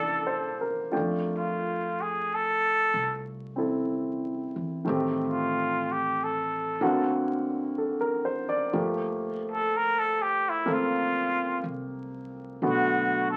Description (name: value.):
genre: jazz ballad.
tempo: 62 BPM.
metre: 4/4.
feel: swing 68% on 8ths.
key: F major.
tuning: A4 = 439 Hz.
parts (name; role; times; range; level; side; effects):
trumpet with straight mute; melody; 0.0-13.4 s; E4 to Bb4; -29 LUFS; equal; none.
warm baby grand piano; accompaniment; 0.0-13.4 s; D3 to G5; -31 LUFS; equal; none.
upright bass; bass; 0.0-13.4 s; G1 to F2; -42 LUFS; equal; none.
room: wet studio ambience, RT60 0.5 s.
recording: very old 78 rpm record, vinyl crackle.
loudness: -28 LUFS.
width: mono.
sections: 0.9-13.4 A section.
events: muted trumpet solo 0.9-13.4.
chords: 0.0 C13; 0.9 F69; 4.9 Am7b5; 6.8 D7b13; 8.7 Gm9; 12.6 Bm7.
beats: | 0.95 1.93 2.92 3.89 | 4.87 5.84 6.81 7.78 | 8.74 9.70 10.67 11.64 | 12.62.